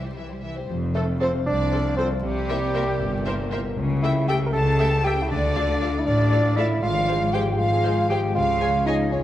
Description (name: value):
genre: cinematic, playful, whimsical film cue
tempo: 78 BPM (dotted quarters)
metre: 6/8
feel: straight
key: F major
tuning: A4 = 439 Hz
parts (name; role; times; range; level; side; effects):
- warm studio violin section; melody; 0.0-8.9 s; C5 to Ab5; -37 LUFS; left 5 dB; none
- rich studio violin section; second line; 0.0-9.2 s; E4 to A5; -34 LUFS; left 2 dB; none
- rich studio viola section; accompaniment; 0.0-9.0 s; E3 to E5; -33 LUFS; right 1 dB; none
- concert harp; arpeggios; 0.0-9.2 s; Ab2 to C6; -31 LUFS; left 5 dB; none
- rich studio cello section; bass; 0.0-9.2 s; C2 to G3; -28 LUFS; equal; none
- rich studio double bass section; bass; 0.0-9.2 s; F1 to D2; -26 LUFS; right 1 dB; none
- silver concert flute; second line; 0.9-9.2 s; G4 to A5; -31 LUFS; left 1 dB; none
- mellow bassoon; accompaniment; 0.9-9.2 s; G3 to Bb4; -25 LUFS; right 1 dB; none
- dark French horn section; sustained chords; 1.0-9.2 s; Ab3 to G4; -32 LUFS; left 5 dB; none
room: wet scoring stage reverb, RT60 1.7 s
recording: dark, warm production, vinyl crackle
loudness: -20 LUFS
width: side -12 dB against mid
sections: 0.7-9.2 A section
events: none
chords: 0.0 C; 0.7 F; 2.2 C7; 3.8 A7/C#; 5.3 Dm; 6.8 Fm/Ab; 8.4 Db